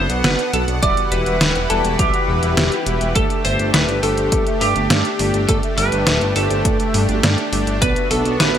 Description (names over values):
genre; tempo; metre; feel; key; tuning
synthwave; 103 BPM; 4/4; straight; G major; A4 = 440 Hz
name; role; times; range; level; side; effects
lightly driven lead guitar; melody; 0.0-8.6 s; G4 to D5; -21 LUFS; equal; analog chorus, digital delay, shimmer reverb
soft supersaw; sustained chords; 0.0-8.6 s; E3 to F#5; -23 LUFS; equal; lush chorus, sidechain pumping, shimmer reverb
mellow synth brass; stabs; 0.0-8.5 s; G3 to F#5; -26 LUFS; right 3 dB; chorus, shimmer reverb
chorused synth bass; bass; 0.0-8.6 s; D1 to G2; -21 LUFS; equal; tube saturation, sidechain pumping
detuned 8-bit digital drum machine; drums; 0.1-8.6 s; hi-hat, snare drum; -20 LUFS; equal; none
electronic kick drum; drums; 0.8-7.9 s; none; -22 LUFS; equal; overdrive
room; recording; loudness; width
moderate plate reverb, RT60 1.3 s; bright 1980s-style digital production; -15 LUFS; side -9 dB against mid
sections
0.0-8.6 A section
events
none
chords
0.0 Bm; 0.8 Emadd9; 3.2 Gsus2; 7.8 Bm